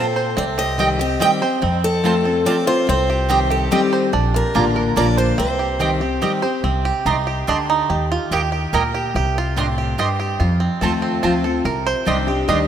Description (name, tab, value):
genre	bluegrass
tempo	144 BPM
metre	3/4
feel	straight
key	C dorian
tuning	A4 = 440 Hz
part	bluegrass banjo	melody	0.0-12.7 s	C4 to Eb5	-22 LUFS	right 6 dB	none
part	picked steel-string acoustic guitar	melody	0.0-6.4 s	G4 to G5	-22 LUFS	left 1 dB	none
part	picked steel-string acoustic guitar	accompaniment	0.0-12.7 s	F2 to G4	-22 LUFS	left 4 dB	none
part	mandolin	stabs	0.0-12.6 s	Bb3 to C6	-24 LUFS	right 4 dB	none
part	upright bass	bass	0.4-12.7 s	A1 to F2	-22 LUFS	equal	none
room	moderate lush hall reverb, RT60 2.8 s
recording	rough home demo mix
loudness	-16 LUFS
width	side -9 dB against mid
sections	0.0-6.6 A section; 6.6-12.7 B section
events	five-string banjo solo 6.6-12.7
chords	0.4 Cm; 1.6 F; 2.9 Cm; 4.1 Bb; 5.4 Cm; 6.6 Cmadd9; 7.9 Eb; 9.1 Cmadd9; 10.4 F; 11.7 Cmadd9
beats	| 0.37 0.79 1.21 | 1.63 2.04 2.46 | 2.88 3.30 3.71 | 4.13 4.55 4.97 | 5.39 5.80 6.22 | 6.64 7.06 7.48 | 7.89 8.31 8.73 | 9.15 9.56 9.98 | 10.40 10.82 11.24 | 11.65 12.07 12.49